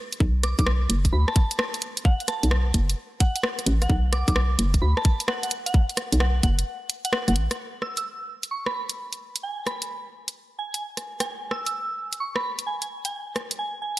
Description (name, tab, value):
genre	UK garage, two-step garage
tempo	130 BPM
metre	4/4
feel	swing 66% on 16ths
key	unclear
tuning	A4 = 441 Hz
part	garage drum kit	drums	0.1-14.0 s	hi-hat, rim click	-27 LUFS	equal	overdrive
part	hollow knocking FM bass	bass	0.2-7.5 s	F#1 to D2	-21 LUFS	equal	none
part	electronic kick drum	drums	0.2-6.6 s	none	-20 LUFS	equal	overdrive
part	soft synth bell	melody	0.4-14.0 s	F#5 to E6	-31 LUFS	right 1 dB	chorus, tape echo
room	light reverb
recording	lossy compression artefacts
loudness	-22 LUFS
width	side -17 dB against mid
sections	0.0-7.6 A section; 7.6-14.0 B section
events	break 6.7-7.6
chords	0.0 B5; 7.6 N.C.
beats	| 0.20 0.67 1.13 1.59 | 2.05 2.51 2.97 3.44 | 3.90 4.36 4.82 5.28 | 5.74 6.20 6.67 7.13 | 7.59 8.05 8.51 8.97 | 9.44 9.90 10.36 10.82 | 11.28 11.74 12.20 12.67 | 13.13 13.59